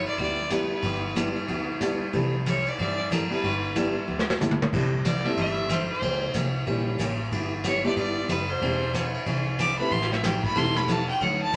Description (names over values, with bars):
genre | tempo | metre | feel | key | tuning
country, western swing | 185 BPM | 4/4 | swing 62% on 8ths | G major | A4 = 440 Hz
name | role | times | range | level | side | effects
bright fiddle | melody | 0.0-11.6 s | Bb4 to D6 | -31 LUFS | equal | none
upright bass | bass | 0.0-11.6 s | E1 to G2 | -34 LUFS | equal | none
vintage brush drum kit | drums | 0.1-11.6 s | crash cymbal, hi-hat, kick drum, ride cymbal, snare drum, toms | -31 LUFS | equal | none
picked steel-string acoustic guitar | accompaniment | 0.2-11.6 s | C3 to B4 | -34 LUFS | equal | none
warm upright piano | accompaniment | 0.5-11.0 s | G3 to B4 | -32 LUFS | equal | none
room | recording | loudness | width
wet club reverb, RT60 0.7 s | none | -26 LUFS | mono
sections
0.0-11.6 A section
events
fiddle solo 0.0-11.6; drum fill 4.1-4.7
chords
0.0 G6; 2.1 C6; 3.4 G6; 4.7 C6; 6.0 C#dim7; 7.3 G6; 8.6 E7alt; 9.9 Am7